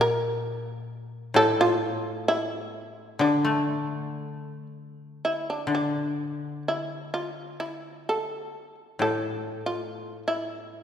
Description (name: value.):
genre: japanese traditional, Japanese chamber music.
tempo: 59-67 BPM.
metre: 4/4.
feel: rubato.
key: D hirajoshi.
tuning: A4 = 440 Hz.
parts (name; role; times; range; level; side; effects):
shamisen; melody; 0.0-10.8 s; D4 to Bb4; -26 LUFS; right 1 dB; none.
koto; accompaniment; 0.0-10.8 s; A2 to A3; -28 LUFS; left 2 dB; none.
room: wet concert hall reverb, RT60 2.2 s.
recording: recorded in a church or concert hall.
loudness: -25 LUFS.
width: side -9 dB against mid.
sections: 0.0-5.2 A section; 5.2-10.8 B section.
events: none.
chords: none.